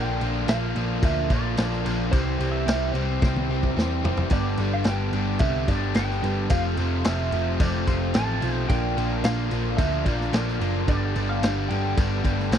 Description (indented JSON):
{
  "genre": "classic rock",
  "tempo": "110 BPM",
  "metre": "4/4",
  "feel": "straight",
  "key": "unclear",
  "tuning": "A4 = 439 Hz",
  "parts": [
    { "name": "lightly driven lead guitar", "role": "melody", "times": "0.0-12.6 s", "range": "C5 to A5", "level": "-32 LUFS", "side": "right 1 dB", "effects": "wah, slapback echo" },
    { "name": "reed electric piano", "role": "accompaniment", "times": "0.0-11.8 s", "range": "B3 to D5", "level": "-37 LUFS", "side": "right 11 dB", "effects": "none" },
    { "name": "mellow tonewheel organ", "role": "sustained chords", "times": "0.0-12.6 s", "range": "B3 to D5", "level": "-39 LUFS", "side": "left 1 dB", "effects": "none" },
    { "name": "crunchy overdriven guitar", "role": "riff", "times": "0.0-12.6 s", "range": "F2 to G4", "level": "-31 LUFS", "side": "left 17 dB", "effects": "none" },
    { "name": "overdriven electric guitar", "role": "riff", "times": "0.0-12.6 s", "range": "F2 to C4", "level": "-33 LUFS", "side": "equal", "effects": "none" },
    { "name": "overdriven semi-hollow guitar", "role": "riff", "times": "0.0-12.6 s", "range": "F2 to E4", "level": "-31 LUFS", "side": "right 15 dB", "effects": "none" },
    { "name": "hollow-body short-scale picked electric bass", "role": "bass", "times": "0.0-12.6 s", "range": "F1 to E2", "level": "-27 LUFS", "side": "equal", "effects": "none" },
    { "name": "vintage drum kit", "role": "drums", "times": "0.2-12.6 s", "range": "crash cymbal, kick drum, snare drum, toms", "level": "-27 LUFS", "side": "equal", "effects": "none" }
  ],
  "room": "little or no reverb",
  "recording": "dry, close 1970s-style studio recording",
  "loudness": "-22 LUFS",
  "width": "side -9 dB against mid",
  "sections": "0.0-12.6 A section",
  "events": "drum fill 3.2-4.3",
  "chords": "0.0 Bb; 2.1 C; 4.3 G; 6.5 F; 8.7 Bb; 10.9 Gadd9"
}